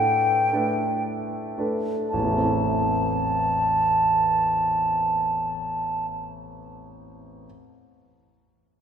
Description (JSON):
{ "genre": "classical, impressionist duo for flute and grand piano", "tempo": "53-63 BPM", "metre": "3/4", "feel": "rubato", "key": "A minor", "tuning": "A4 = 440 Hz", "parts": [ { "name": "concert flute", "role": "melody", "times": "0.0-6.1 s", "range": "G5 to A5", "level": "-22 LUFS", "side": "right 1 dB", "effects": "none" }, { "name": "clear concert grand piano", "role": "accompaniment", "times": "0.0-7.5 s", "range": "A1 to B4", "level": "-27 LUFS", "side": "equal", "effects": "none" } ], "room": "wet church reverb, RT60 3.0 s", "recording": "recorded in a church or concert hall", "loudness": "-21 LUFS", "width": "side -8 dB against mid", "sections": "0.0-2.1 A section; 2.1-5.3 B section", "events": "slowing down 0.0-2.1", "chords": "0.0 Gadd9/A; 2.1 Am" }